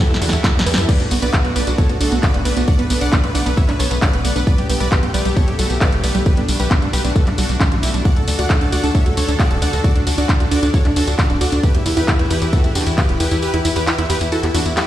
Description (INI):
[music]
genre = uplifting trance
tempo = 134 BPM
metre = 4/4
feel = straight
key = B minor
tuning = A4 = 437 Hz
[part]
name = supersaw chords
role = melody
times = 0.0-14.8 s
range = G3 to F#5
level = -23 LUFS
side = equal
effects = sidechain pumping, dub echo
[part]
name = lush unison pad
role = sustained chords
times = 0.0-14.9 s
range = D3 to B4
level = -27 LUFS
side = left 1 dB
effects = chorus, vintage 12-bit sampler grit, sidechain pumping
[part]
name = wide unison pluck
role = arpeggios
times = 0.0-14.8 s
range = G2 to E5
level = -24 LUFS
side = right 3 dB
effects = sidechain pumping, tape echo
[part]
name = tight sequencer bass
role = bass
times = 0.1-14.7 s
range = D1 to F#2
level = -20 LUFS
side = equal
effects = sidechain pumping
[part]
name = house drum kit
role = drums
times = 0.1-14.9 s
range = crash cymbal, handclaps, hi-hat, ride cymbal, snare drum, tambourine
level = -23 LUFS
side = equal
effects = sidechain pumping on hats, sidechain pumping on perc, sidechain pumping on cymbals
[part]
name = electronic kick drum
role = drums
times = 0.4-13.1 s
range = none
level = -15 LUFS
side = equal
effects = none
[sound]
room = light reverb, digital ambience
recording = played on a big sound system in a bare room, large studio reverb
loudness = -14 LUFS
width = side -13 dB against mid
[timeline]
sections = 0.9-14.9 A section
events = drum fill 0.0-0.9; drop 0.9-14.9; kick drops out 13.4-14.9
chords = 0.0 Em; 0.9 Bm7; 4.5 Gadd9; 8.1 D; 11.6 Em